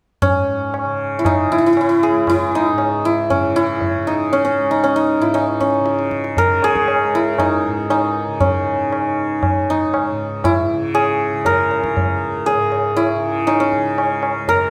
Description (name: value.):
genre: indian classical, Hindustani.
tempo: 118 BPM.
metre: 4/4.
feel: straight.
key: C# raga shivaranjani.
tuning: A4 = 440 Hz.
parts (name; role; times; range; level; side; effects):
santur; melody; 0.2-14.7 s; C#4 to A#4; -18 LUFS; equal; none.
tanpura; drone; 0.2-14.7 s; C#2 to C#3; -30 LUFS; equal; none.
tabla; percussion; 0.2-14.7 s; none; -25 LUFS; equal; none.
room: moderate recital hall reverb, RT60 1.5 s.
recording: close, detailed microphones.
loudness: -17 LUFS.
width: mono.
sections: 0.2-14.7 A section.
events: none.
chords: none.